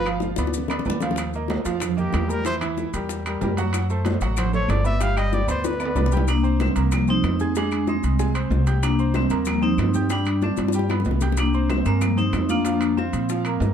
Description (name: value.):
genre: latin, salsa.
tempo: 188 BPM.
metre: 4/4.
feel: straight.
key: C minor.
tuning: A4 = 440 Hz.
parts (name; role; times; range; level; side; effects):
clear trumpet; melody; 0.0-6.2 s; G4 to F5; -27 LUFS; left 1 dB; slapback echo.
bright concert grand piano; accompaniment; 0.0-13.7 s; E3 to Ab6; -29 LUFS; right 2 dB; none.
upright bass; bass; 0.0-13.7 s; G1 to Bb2; -24 LUFS; equal; none.
bongos; percussion; 0.1-13.7 s; none; -31 LUFS; left 8 dB; none.
claves; percussion; 0.1-13.6 s; none; -39 LUFS; left 3 dB; none.
congas; percussion; 0.1-13.7 s; none; -30 LUFS; right 3 dB; none.
maracas; percussion; 0.1-13.7 s; none; -39 LUFS; left 8 dB; none.
timbales; percussion; 0.1-13.7 s; none; -33 LUFS; right 5 dB; none.
vibraphone with hard mallets; melody; 6.3-13.6 s; F3 to Eb4; -23 LUFS; left 1 dB; none.
room: light reverb.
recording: dark, warm production.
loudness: -20 LUFS.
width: side -8 dB against mid.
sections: 0.0-6.3 A section; 6.3-13.7 B section.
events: trumpet solo 0.0-6.3; drum fill 0.4-1.2, 5.6-6.3, 10.6-11.4.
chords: 0.0 G7; 1.2 Ebsus2; 2.5 C7#11/E (rootless); 3.7 D7 (rootless); 5.0 G; 6.3 Cm7; 7.6 Fm7; 8.8 Cm7; 10.1 Gsus4; 10.7 G; 11.4 Cm7; 12.7 Fsus4.